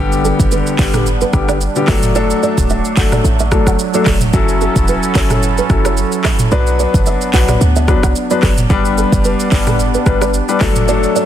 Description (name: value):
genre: afrobeats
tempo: 110 BPM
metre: 4/4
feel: swing 55% on 16ths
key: unclear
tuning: A4 = 440 Hz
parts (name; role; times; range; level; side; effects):
- warm grand piano; accompaniment; 0.0-11.3 s; D3 to B4; -17 LUFS; left 5 dB; none
- warm analog pad; sustained chords; 0.0-11.3 s; F#3 to A4; -20 LUFS; right 4 dB; chorus
- nylon-string guitar; riff; 0.0-11.2 s; F#4 to F#5; -22 LUFS; right 7 dB; ping-pong delay
- short 808-style bass; bass; 0.0-11.1 s; D1 to D2; -16 LUFS; equal; none
- afro-pop drum kit; drums; 0.1-11.3 s; handclaps, hi-hat, kick drum, rim click, shaker, toms; -16 LUFS; right 1 dB; none
room: digital ambience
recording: dense, heavily limited modern master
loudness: -11 LUFS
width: side -10 dB against mid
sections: 0.0-11.3 A section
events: none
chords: 0.0 G; 1.9 D; 4.3 F#m7; 6.5 Bm; 8.7 G; 10.6 D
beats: 0.52 1.06 1.61 | 2.15 2.70 3.25 3.79 | 4.34 4.88 5.43 5.97 | 6.52 7.06 7.61 8.15 | 8.70 9.25 9.79 10.34 | 10.88